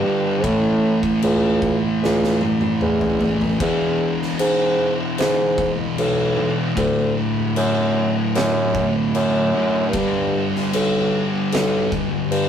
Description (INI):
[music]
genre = stoner and doom metal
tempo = 76 BPM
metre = 4/4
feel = straight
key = unclear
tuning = A4 = 440 Hz
[part]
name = thick fuzz guitar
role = riff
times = 0.0-12.5 s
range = D2 to A3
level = -20 LUFS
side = equal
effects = distortion
[part]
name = mellow bassoon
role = bass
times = 0.0-12.5 s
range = B1 to A2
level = -20 LUFS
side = equal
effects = overdrive
[part]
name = oversized low-tuned drum kit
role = drums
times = 0.4-12.5 s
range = crash cymbal, kick drum, snare drum, toms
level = -27 LUFS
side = left 1 dB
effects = none
[sound]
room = light reverb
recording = rough rehearsal-room recording, warm saturation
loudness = -17 LUFS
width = side -8 dB against mid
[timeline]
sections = 0.0-12.5 A section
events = drum fill 2.0-3.6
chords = 0.4 A; 3.6 E; 6.8 D; 9.9 G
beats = | 0.44 1.23 2.02 2.81 | 3.60 4.39 5.18 5.97 | 6.77 7.56 8.35 9.14 | 9.94 10.73 11.52 12.31